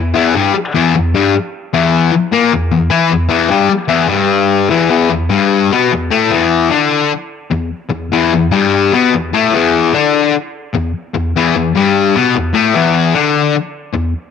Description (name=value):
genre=rock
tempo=150 BPM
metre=4/4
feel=straight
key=E minor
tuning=A4 = 442 Hz
part: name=fuzz guitar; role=solo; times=0.0-14.1 s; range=E2 to E4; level=-11 LUFS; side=left 5 dB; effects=distortion
room=moderate spring reverb, RT60 1.8 s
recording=none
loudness=-11 LUFS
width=side -6 dB against mid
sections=0.0-4.9 A section; 4.9-14.3 B section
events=none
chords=0.0 Em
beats=| 0.15 0.55 0.94 1.34 | 1.74 2.13 2.53 2.92 | 3.32 3.72 4.12 4.52 | 4.92 5.32 5.72 6.12 | 6.52 6.92 7.33 7.73 | 8.13 8.53 8.94 9.34 | 9.74 10.14 10.54 10.95 | 11.35 11.75 12.15 12.55 | 12.95 13.36 13.76